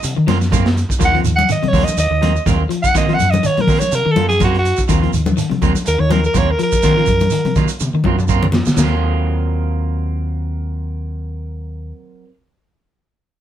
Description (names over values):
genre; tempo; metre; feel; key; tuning
afrobeat; 123 BPM; 4/4; swing 55% on 16ths; Eb dorian; A4 = 440 Hz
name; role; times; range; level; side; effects
raspy alto saxophone; melody; 0.0-7.6 s; Gb4 to Gb5; -17 LUFS; right 1 dB; none
electric guitar at the edge of break-up; stabs; 0.0-12.3 s; Gb3 to F4; -24 LUFS; right 7 dB; none
fingered electric bass; bass; 0.0-11.9 s; Eb2 to Eb3; -18 LUFS; equal; none
crunchy breakbeat drum kit; drums; 0.0-8.9 s; china cymbal, hi-hat, kick drum, snare drum, toms; -21 LUFS; equal; none
shekere; percussion; 0.0-8.9 s; none; -25 LUFS; right 7 dB; none
congas; percussion; 0.1-8.9 s; none; -21 LUFS; left 4 dB; none
electric guitar at the edge of break-up; arpeggios; 0.2-8.9 s; Bb2 to F3; -22 LUFS; left 7 dB; none
room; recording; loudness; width
moderate studio reverb, RT60 0.6 s; band playing live in one room; -13 LUFS; side -11 dB against mid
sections
0.0-8.8 A section; 8.8-12.7 B section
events
alto saxophone solo 0.0-8.8; drum fill 7.8-8.8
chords
0.0 Ebm69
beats
0.03 0.52 | 1.00 1.49 1.97 2.46 | 2.95 3.43 3.92 4.40 | 4.89 5.38 5.86 6.35 | 6.83 7.32 7.81 8.29 | 8.78 9.27 9.75 10.24 | 10.73 11.21 11.70 12.19